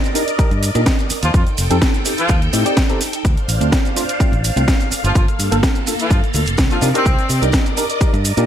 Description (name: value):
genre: filtered disco house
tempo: 126 BPM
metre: 4/4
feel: straight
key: C dorian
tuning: A4 = 441 Hz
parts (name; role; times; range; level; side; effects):
- phased string machine; sustained chords; 0.0-8.5 s; Bb3 to G5; -24 LUFS; equal; ensemble chorus, phaser, vintage 12-bit sampler grit, sidechain pumping
- house drum kit; drums; 0.0-8.5 s; hi-hat, shaker, snare drum; -22 LUFS; equal; overdrive, sidechain pumping on hats, sidechain pumping on cymbals, sidechain pumping on perc, gated reverb
- mellow tine electric piano; accompaniment; 0.1-8.4 s; A3 to D5; -22 LUFS; equal; phaser, sidechain pumping
- maracas; percussion; 0.1-8.5 s; none; -30 LUFS; right 6 dB; sidechain pumping on perc
- fingered electric bass; bass; 0.4-8.5 s; F1 to C3; -18 LUFS; equal; tube saturation, sidechain pumping
- electronic kick drum; drums; 0.4-8.1 s; none; -16 LUFS; equal; overdrive
- clear horn section; melody; 1.2-7.4 s; F3 to F4; -23 LUFS; equal; sidechain pumping, ping-pong delay
room: light reverb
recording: bright 1980s-style digital production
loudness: -14 LUFS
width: side -10 dB against mid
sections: 0.0-8.5 A section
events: none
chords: 0.0 Cm9 (rootless); 1.3 F9; 3.2 Dm7; 4.9 Gm9; 6.8 Cm9